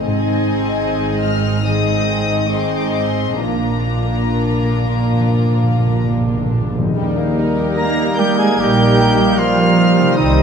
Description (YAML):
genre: classical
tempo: 65-78 BPM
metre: 4/4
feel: rubato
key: Eb major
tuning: A4 = 442 Hz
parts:
  - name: dark studio violin section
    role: second line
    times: 0.0-10.4 s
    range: G3 to Eb5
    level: -24 LUFS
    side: left 3 dB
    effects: none
  - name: warm studio viola section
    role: accompaniment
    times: 0.0-10.4 s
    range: G3 to Eb4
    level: -23 LUFS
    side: right 1 dB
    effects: none
  - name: concert harp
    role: arpeggios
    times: 0.0-10.4 s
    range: Ab2 to Eb5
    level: -25 LUFS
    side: left 9 dB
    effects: none
  - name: dark studio double bass section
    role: bass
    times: 0.0-10.4 s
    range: Ab1 to Eb2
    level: -20 LUFS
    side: right 2 dB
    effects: none
  - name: warm studio cello section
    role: bass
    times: 0.0-10.4 s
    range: Ab2 to Bb3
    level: -21 LUFS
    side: right 5 dB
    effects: none
  - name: warm studio violin section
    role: melody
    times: 0.1-10.4 s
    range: Ab5 to Bb6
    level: -25 LUFS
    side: left 3 dB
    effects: none
  - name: timpani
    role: percussion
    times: 3.4-6.9 s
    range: Bb2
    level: -24 LUFS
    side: left 1 dB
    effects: none
  - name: bright trombone section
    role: sustained chords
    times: 6.9-10.4 s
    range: G3 to Eb4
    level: -24 LUFS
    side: right 4 dB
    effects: none
  - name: bright clarinet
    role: second line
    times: 7.0-10.4 s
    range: Bb3 to C4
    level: -24 LUFS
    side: left 1 dB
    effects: none
  - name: clear bassoon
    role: accompaniment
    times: 7.0-10.4 s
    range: G3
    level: -24 LUFS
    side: left 2 dB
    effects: none
  - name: dark trumpet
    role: stabs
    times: 7.0-10.4 s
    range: Bb4 to C5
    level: -23 LUFS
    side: right 4 dB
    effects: none
  - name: mellow cor anglais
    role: second line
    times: 7.8-10.4 s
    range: Eb4 to Bb4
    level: -23 LUFS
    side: right 2 dB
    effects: none
  - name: silver concert flute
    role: second line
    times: 7.8-10.4 s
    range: Eb5 to Bb5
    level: -23 LUFS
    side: left 2 dB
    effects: none
  - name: mellow French horn section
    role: sustained chords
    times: 7.8-10.4 s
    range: Eb3 to Bb3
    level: -22 LUFS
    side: left 4 dB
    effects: none
room: moderate scoring stage reverb, RT60 1.9 s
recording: none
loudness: -14 LUFS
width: side -6 dB against mid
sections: 0.0-7.0 A section; 7.0-10.4 B section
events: timpani fill 3.4-7.0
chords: 0.1 Ab; 3.4 Bb; 7.0 Eb